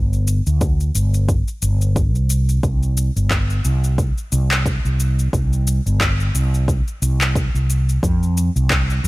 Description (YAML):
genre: sunset chillout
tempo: 89 BPM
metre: 4/4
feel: swing 57% on 16ths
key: unclear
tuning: A4 = 440 Hz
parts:
  - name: fretless electric bass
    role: bass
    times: 0.0-9.1 s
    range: G1 to F2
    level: -17 LUFS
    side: equal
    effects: lush chorus
  - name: electronic shaker and handclaps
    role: drums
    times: 0.1-9.1 s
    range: none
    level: -24 LUFS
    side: left 1 dB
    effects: overdrive
  - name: electronic kick drum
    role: drums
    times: 0.6-8.9 s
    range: none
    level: -21 LUFS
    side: equal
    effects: overdrive
room: little or no reverb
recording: none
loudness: -16 LUFS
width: side -20 dB against mid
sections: 0.0-9.1 A section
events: none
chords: none